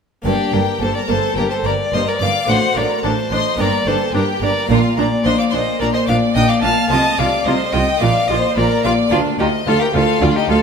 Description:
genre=classical, baroque-style concerto movement with solo episodes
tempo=108 BPM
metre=4/4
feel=straight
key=G minor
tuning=A4 = 439 Hz
part: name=clear chamber violin section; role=melody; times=0.2-10.6 s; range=D5 to F6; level=-24 LUFS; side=left 5 dB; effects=none
part: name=clear chamber violin section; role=second line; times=0.2-10.6 s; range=D4 to F5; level=-21 LUFS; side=left 1 dB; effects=none
part: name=harpsichord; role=accompaniment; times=0.2-10.6 s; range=D2 to G4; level=-22 LUFS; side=left 3 dB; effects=none
part: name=clear chamber double bass section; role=bass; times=0.2-10.6 s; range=G1 to D2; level=-23 LUFS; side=right 4 dB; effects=none
part: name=rich violin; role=melody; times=0.3-10.6 s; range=F4 to A5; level=-20 LUFS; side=left 2 dB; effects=none
part: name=rich chamber viola section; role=accompaniment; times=0.3-10.6 s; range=Bb3 to F4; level=-25 LUFS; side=right 2 dB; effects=none
part: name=clear chamber cello section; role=bass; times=0.3-10.6 s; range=D2 to C3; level=-22 LUFS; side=right 3 dB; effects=none
room=moderate recital hall reverb, RT60 1.7 s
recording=none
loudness=-14 LUFS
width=side -6 dB against mid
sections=0.3-10.6 A section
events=none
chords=0.3 Gm; 2.5 D/A; 3.6 Gm; 4.7 Bb; 6.9 F/C; 8.0 Bb; 9.1 Dm

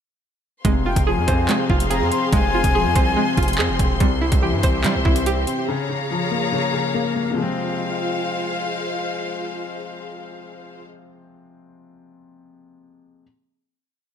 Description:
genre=hip hop, drill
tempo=143 BPM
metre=4/4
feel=half-time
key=F harmonic minor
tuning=A4 = 441 Hz
part: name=dark concert grand piano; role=accompaniment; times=0.6-13.2 s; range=C3 to C4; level=-25 LUFS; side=left 4 dB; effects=low-pass filter
part: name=warm studio string section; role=sustained chords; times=0.6-10.8 s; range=Ab3 to C6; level=-26 LUFS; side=left 2 dB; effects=none
part: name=string-like resonator pluck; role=arpeggios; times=0.6-5.7 s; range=G3 to C5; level=-25 LUFS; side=right 5 dB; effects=chorus, low-pass filter, diffuse ambient delay
part: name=distorted 808-style bass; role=bass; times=0.6-5.5 s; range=E1 to G3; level=-23 LUFS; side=right 1 dB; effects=distortion
part: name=drill drum kit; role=drums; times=0.6-5.6 s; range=handclaps, hi-hat, kick drum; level=-21 LUFS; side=right 1 dB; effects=none
part: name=jazz flute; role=second line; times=0.9-4.0 s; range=G5 to C6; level=-25 LUFS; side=left 4 dB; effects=diffuse ambient delay
room=moderate plate reverb, RT60 2.0 s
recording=dreamy mix soaked in reverb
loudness=-18 LUFS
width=side -8 dB against mid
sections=0.6-7.4 hook; 7.4-10.7 final chord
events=none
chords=0.6 Fm; 4.0 C; 5.7 Db6; 7.4 Fm

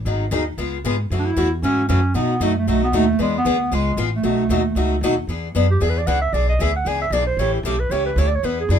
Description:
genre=acoustic string swing (jazz manouche)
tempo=229 BPM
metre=4/4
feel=swing 56% on 8ths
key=E mixolydian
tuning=A4 = 438 Hz
part: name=upright bass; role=bass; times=0.0-8.8 s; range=G#1 to B2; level=-22 LUFS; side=equal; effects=none
part: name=picked steel-string acoustic guitar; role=accompaniment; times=0.1-8.8 s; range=B2 to G#4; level=-22 LUFS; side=left 3 dB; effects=none
part: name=breathy clarinet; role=melody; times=1.2-8.8 s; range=G#3 to G#5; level=-21 LUFS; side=right 3 dB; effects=none
room=light reverb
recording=minimal, uncompressed stereo recording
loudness=-17 LUFS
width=side -8 dB against mid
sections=0.0-5.3 A section; 5.3-8.8 B section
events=clarinet solo 5.3-8.8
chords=0.1 G#m7; 0.6 C#7; 1.1 F#m7; 2.2 B7; 3.2 E7; 3.7 C#7; 4.2 B7; 5.3 E7; 7.4 A7

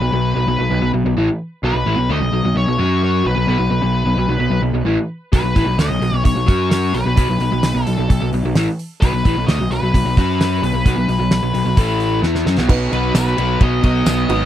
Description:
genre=classic rock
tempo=130 BPM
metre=4/4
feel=straight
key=B mixolydian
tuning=A4 = 440 Hz
part: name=octave-fuzz lead guitar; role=melody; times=0.0-14.5 s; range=B4 to D#5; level=-22 LUFS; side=left 2 dB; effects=distortion
part: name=crunchy overdriven guitar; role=riff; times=0.0-14.5 s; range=A2 to F#4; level=-20 LUFS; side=left 1 dB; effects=none
part: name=fuzz picked electric bass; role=bass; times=0.0-14.5 s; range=G#1 to F#2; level=-19 LUFS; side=equal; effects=overdrive
part: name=damped 70s drum kit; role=drums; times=5.3-14.4 s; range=crash cymbal, hi-hat, kick drum, ride cymbal, snare drum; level=-15 LUFS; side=right 1 dB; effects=none
part: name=honky-tonk upright piano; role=accompaniment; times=12.7-14.5 s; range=D#4 to B4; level=-24 LUFS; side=right 6 dB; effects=none
part: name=tambourine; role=percussion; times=13.2-14.2 s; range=none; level=-31 LUFS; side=left 7 dB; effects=none
room=little or no reverb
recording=dry, close 1970s-style studio recording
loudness=-14 LUFS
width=side -11 dB against mid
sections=0.0-12.7 A section; 12.7-14.5 B section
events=drum fill 12.2-12.7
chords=0.0 B5; 2.8 F#5; 3.3 B5; 6.5 F#5; 6.9 B5; 10.2 F#5; 10.6 B5; 11.8 A5; 12.2 B5; 12.7 B

